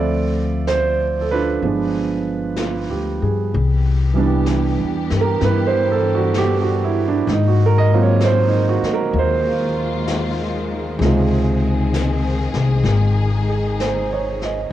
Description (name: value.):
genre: jazz ballad.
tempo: 64 BPM.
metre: 4/4.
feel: swing 67% on 8ths.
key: unclear.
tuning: A4 = 440 Hz.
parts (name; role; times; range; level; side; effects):
warm concert grand piano; accompaniment; 0.0-14.7 s; B#2 to E5; -19 LUFS; right 5 dB; none.
upright bass; bass; 0.0-14.7 s; G1 to G#2; -19 LUFS; left 2 dB; none.
jazz brush drum kit; drums; 0.7-14.7 s; brushed snare drum, hi-hat, snare drum; -31 LUFS; left 2 dB; cassette tape.
warm symphonic string section; sustained chords; 3.5-14.7 s; D#3 to G#4; -26 LUFS; left 3 dB; none.
room: light reverb, studio reverb.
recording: home recording on cassette.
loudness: -16 LUFS.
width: side -12 dB against mid.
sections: 0.0-3.5 A section; 3.5-14.7 B section.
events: none.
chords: 0.0 Dm7; 1.6 G7b9; 3.5 Cmaj7; 7.3 G#13; 11.0 C#maj7.